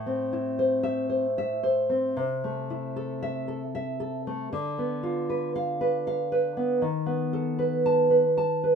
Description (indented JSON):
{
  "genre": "romantic piece for solo classical guitar",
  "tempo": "77 BPM",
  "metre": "3/4",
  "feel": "rubato",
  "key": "A minor",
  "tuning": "A4 = 440 Hz",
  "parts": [
    { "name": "nylon-string guitar", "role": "solo", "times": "0.0-8.8 s", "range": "A2 to A5", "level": "-24 LUFS", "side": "equal", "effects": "none" }
  ],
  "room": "light reverb",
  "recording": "minimal, uncompressed stereo recording",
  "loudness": "-24 LUFS",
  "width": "side -6 dB against mid",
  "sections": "0.0-8.8 A section",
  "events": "none",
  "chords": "0.0 Am; 2.2 Am/C; 4.5 Bdim/D; 6.8 B7/D#"
}